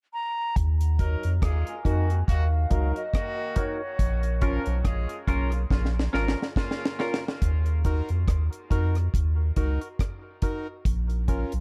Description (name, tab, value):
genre	dub reggae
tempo	70 BPM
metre	4/4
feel	swing 57% on 16ths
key	Eb minor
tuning	A4 = 440 Hz
part	reedy silver concert flute	melody	0.1-4.4 s	Db5 to Bb5	-37 LUFS	equal	low-pass filter, dub echo
part	soft dub sub bass	bass	0.6-11.6 s	Ab1 to F2	-26 LUFS	equal	none
part	deep reggae drum kit	drums	0.6-11.6 s	hi-hat, kick drum, rim click, snare drum	-30 LUFS	equal	none
part	warm horn section	second line	1.0-7.2 s	Db3 to Bb4	-39 LUFS	equal	dub echo
part	semi-hollow electric guitar	accompaniment	1.0-7.2 s	Db4 to Bb4	-39 LUFS	equal	low-pass filter, dub echo
part	percussive organ stab	stabs	1.0-11.5 s	Db4 to Bb4	-37 LUFS	equal	chorus, low-pass filter, dub echo
room	small room ambience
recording	dark, warm production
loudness	-26 LUFS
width	mono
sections	0.6-7.4 A section; 7.4-11.6 B section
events	filter sweep 0.6-7.4, 7.4-11.6; drum fill 5.7-7.4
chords	0.0 N.C.; 0.6 Ebm; 4.0 Bbm; 7.4 Ebm; 10.8 Bbm